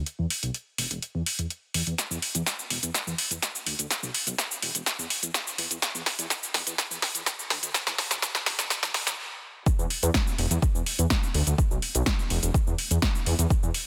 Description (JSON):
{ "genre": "progressive house", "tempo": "125 BPM", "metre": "4/4", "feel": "straight", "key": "unclear", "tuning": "A4 = 443 Hz", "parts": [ { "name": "deep house drum kit", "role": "drums", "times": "0.1-13.8 s", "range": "cabasa, hi-hat, snare drum", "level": "-29 LUFS", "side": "equal", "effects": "overdrive, high-pass filter on hats, studio reverb, high-pass filter on snare, high-pass filter on perc" }, { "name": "dark detuned saw bass", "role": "bass", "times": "0.2-13.7 s", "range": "E1 to E2", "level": "-30 LUFS", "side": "equal", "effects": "sidechain pumping" }, { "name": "electronic kick drum", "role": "drums", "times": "9.7-13.6 s", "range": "none", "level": "-28 LUFS", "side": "equal", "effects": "overdrive, studio reverb" } ], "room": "light reverb", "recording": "dense, heavily limited modern master, high-pass filter", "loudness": "-27 LUFS", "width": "mono", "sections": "0.0-9.7 A section; 9.7-13.9 B section", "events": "build-up 0.0-9.7; drum fill 2.0-9.2; stop 9.2-9.7; drop 9.7-13.9", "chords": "none", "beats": "| 0.07 0.55 1.02 1.50 | 1.99 2.46 2.94 3.42 | 3.90 4.38 4.87 5.34 | 5.83 6.30 6.79 7.26 | 7.75 8.22 8.71 9.19 | 9.66 10.14 10.62 11.11 | 11.59 12.06 12.54 13.03 | 13.51" }